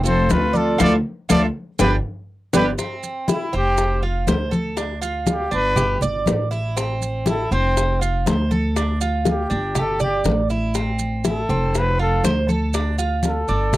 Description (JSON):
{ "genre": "latin, Cuban son and guajira", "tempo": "120 BPM", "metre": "4/4", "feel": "straight", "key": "unclear", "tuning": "A4 = 444 Hz", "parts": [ { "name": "picked steel-string acoustic guitar", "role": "accompaniment", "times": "0.0-2.7 s", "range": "D3 to F4", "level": "-24 LUFS", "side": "left 4 dB", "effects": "none" }, { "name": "Cuban tres", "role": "arpeggios", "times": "0.0-13.8 s", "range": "C4 to D5", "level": "-25 LUFS", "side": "right 4 dB", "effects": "none" }, { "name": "upright bass", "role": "bass", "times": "0.0-13.8 s", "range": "F1 to D2", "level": "-22 LUFS", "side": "equal", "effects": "none" }, { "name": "congas", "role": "percussion", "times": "0.0-13.8 s", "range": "none", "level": "-25 LUFS", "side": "left 1 dB", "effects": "none" }, { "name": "breathy trumpet", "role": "melody", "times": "0.1-13.8 s", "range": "E4 to D5", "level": "-22 LUFS", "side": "left 1 dB", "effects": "none" }, { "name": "bright silver concert flute", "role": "second line", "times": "0.1-2.7 s", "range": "F4 to A4", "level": "-27 LUFS", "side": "right 7 dB", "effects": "none" }, { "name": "maracas", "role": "percussion", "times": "0.1-13.8 s", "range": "none", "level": "-30 LUFS", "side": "right 11 dB", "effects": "none" }, { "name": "bongos", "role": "percussion", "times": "0.3-13.8 s", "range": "none", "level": "-26 LUFS", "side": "left 6 dB", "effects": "none" } ], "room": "little or no reverb", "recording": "dry, close 1970s-style studio recording", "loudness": "-18 LUFS", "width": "side -16 dB against mid", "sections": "0.0-2.8 A section; 2.8-13.8 B section", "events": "band accent 0.8-2.8; drum fill 2.3-2.8; trumpet solo 2.8-13.8", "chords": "0.0 F; 0.8 Dmadd9; 1.8 G; 2.8 Cadd11; 3.8 F; 4.8 Dm; 5.8 G5; 6.8 Am; 7.8 F; 8.8 Dm; 9.8 G5; 10.8 Am; 11.7 F; 12.7 Dm", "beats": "0.30 | 0.80 1.30 1.79 2.29 | 2.79 3.29 3.78 4.28 | 4.78 5.28 5.77 6.27 | 6.77 7.27 7.76 8.26 | 8.76 9.26 9.76 10.25 | 10.75 11.25 11.75 12.24 | 12.74 13.24 13.74" }